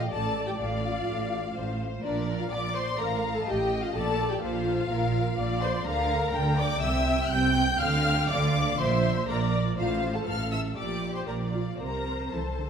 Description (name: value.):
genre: quick classical-period movement for string orchestra.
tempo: 124 BPM.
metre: 4/4.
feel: rubato.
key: Bb major.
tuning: A4 = 440 Hz.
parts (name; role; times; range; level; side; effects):
warm symphonic violin section; melody; 0.0-12.7 s; D5 to G6; -32 LUFS; left 4 dB; none.
warm symphonic violin section; second line; 0.0-12.7 s; G4 to G5; -34 LUFS; left 3 dB; none.
warm symphonic viola section; accompaniment; 0.0-12.7 s; D4 to G5; -31 LUFS; equal; none.
rich symphonic double bass section; bass; 0.0-12.7 s; A1 to D2; -31 LUFS; right 3 dB; none.
warm symphonic cello section; bass; 0.0-12.7 s; A2 to E3; -32 LUFS; right 2 dB; none.
room: wet recital hall reverb, RT60 1.6 s.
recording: none.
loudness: -25 LUFS.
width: side -7 dB against mid.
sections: 0.0-12.7 A section.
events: none.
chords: 0.1 F/A; 2.0 Bb; 3.0 F7/A; 3.9 Bb; 5.9 Bb/D; 6.8 C; 7.8 Dm; 8.8 Bb; 9.8 F/A; 10.8 Gm/Bb; 11.8 C7(no3).